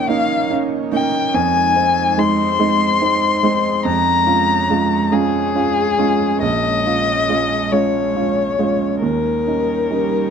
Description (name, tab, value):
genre	neoclassical piano and strings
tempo	47 BPM (dotted quarters)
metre	6/8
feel	rubato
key	F minor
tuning	A4 = 440 Hz
part	muted violin	melody	0.0-10.3 s	Ab4 to C6	-17 LUFS	left 6 dB	plate reverb
part	warm grand piano	accompaniment	0.0-10.3 s	Bb1 to F4	-19 LUFS	right 5 dB	none
part	airy breathy pad	sustained chords	0.0-10.3 s	G3 to Db5	-25 LUFS	right 2 dB	chorus
room	moderate large studio reverb, RT60 0.7 s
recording	dark, warm production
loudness	-15 LUFS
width	side -7 dB against mid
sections	0.0-10.3 A section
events	none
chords	0.0 Eb7; 1.3 Fm7; 3.9 Db/F; 6.4 Bbm7; 9.0 Eb7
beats	0.09 | 1.34 2.60 | 3.85 5.12 | 6.43 7.72 | 9.03